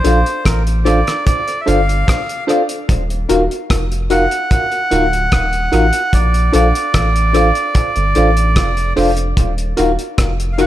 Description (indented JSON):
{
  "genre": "lovers rock reggae",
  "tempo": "74 BPM",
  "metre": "4/4",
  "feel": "straight",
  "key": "Bb major",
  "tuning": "A4 = 439 Hz",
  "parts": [
    { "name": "melodica", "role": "melody", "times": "0.0-10.7 s", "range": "Bb4 to Gb5", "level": "-19 LUFS", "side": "right 2 dB", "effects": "tape echo" },
    { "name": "mellow tine electric piano", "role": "accompaniment", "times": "0.0-10.7 s", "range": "D4 to C5", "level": "-19 LUFS", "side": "left 2 dB", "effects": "medium stereo tremolo, tape echo" },
    { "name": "soft dub sub bass", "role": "bass", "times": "0.0-10.7 s", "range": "D1 to Bb1", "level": "-16 LUFS", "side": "equal", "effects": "none" },
    { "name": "cloth-damped thuddy drum kit", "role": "drums", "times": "0.0-10.7 s", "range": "hi-hat, kick drum, rim click", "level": "-18 LUFS", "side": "equal", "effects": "tape echo" },
    { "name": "electric guitar at the edge of break-up", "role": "stabs", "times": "0.1-10.7 s", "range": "Gb4 to F5", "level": "-22 LUFS", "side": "right 1 dB", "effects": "wide subtle chorus, tape echo" }
  ],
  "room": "light reverb, small room ambience",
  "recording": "none",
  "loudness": "-12 LUFS",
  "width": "side -13 dB against mid",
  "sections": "0.0-10.7 A section",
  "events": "none",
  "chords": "0.0 Bbmaj7 (rootless); 2.9 Ebmadd9; 6.1 Bbmaj7; 9.4 Ebmadd9"
}